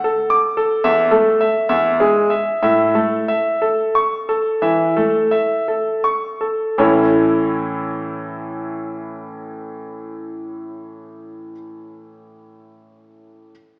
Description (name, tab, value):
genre	classical, baroque-style suite movement for grand piano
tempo	52-76 BPM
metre	4/4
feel	rubato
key	A major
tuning	A4 = 440 Hz
part	bright grand piano	solo	0.0-13.5 s	E2 to D6	-16 LUFS	equal	none
room	wet recital hall reverb, RT60 1.6 s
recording	heard from further back in the room, small speaker sound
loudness	-14 LUFS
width	side -28 dB against mid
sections	0.0-6.8 A section; 6.8-11.3 B section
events	slowing down 0.0-6.8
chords	0.0 D5; 0.8 A5/E; 1.7 E; 2.6 A